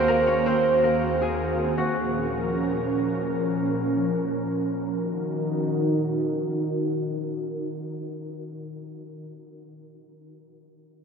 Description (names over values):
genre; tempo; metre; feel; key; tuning
hip hop; free time; none; none; Eb dorian; A4 = 440 Hz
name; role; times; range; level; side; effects
steel-string zither; melody; 0.0-4.2 s; Bb3 to Ab5; -24 LUFS; right 1 dB; low-pass filter, analog delay
airy breathy pad; sustained chords; 0.0-8.8 s; Eb2 to Bb4; -26 LUFS; equal; chorus, low-pass filter
room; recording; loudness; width
wet huge ambient reverb, RT60 7.7 s; dreamy mix soaked in reverb; -23 LUFS; side -6 dB against mid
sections
0.0-5.0 A section; 5.0-8.0 B section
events
filter sweep 0.0-5.0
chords
0.0 Ebm; 2.0 Bbm; 5.0 Ebm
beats
free time